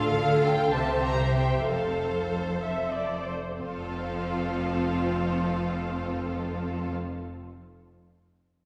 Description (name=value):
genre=quick classical-period movement for string orchestra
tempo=59-71 BPM (dotted quarters)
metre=6/8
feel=rubato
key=F major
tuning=A4 = 440 Hz
part: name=rich symphonic violin section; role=melody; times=0.0-6.9 s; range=F5 to Bb5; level=-38 LUFS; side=equal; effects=none
part: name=clear symphonic violin section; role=second line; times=0.0-6.9 s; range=F4 to F5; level=-36 LUFS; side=equal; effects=none
part: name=warm studio viola section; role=accompaniment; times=0.0-6.9 s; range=F3 to E5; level=-32 LUFS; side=equal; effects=none
part: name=clear symphonic double bass section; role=bass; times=0.0-6.9 s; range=F1 to D2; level=-38 LUFS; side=equal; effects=none
part: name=rich symphonic cello section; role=bass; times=0.0-6.9 s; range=F2 to D3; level=-34 LUFS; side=equal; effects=none
room=wet concert hall reverb, RT60 1.9 s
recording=heard from further back in the room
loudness=-28 LUFS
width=mono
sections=0.0-3.6 A section; 3.6-7.4 B section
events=slowing down 0.0-3.6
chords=0.0 Dm; 0.7 C; 1.7 F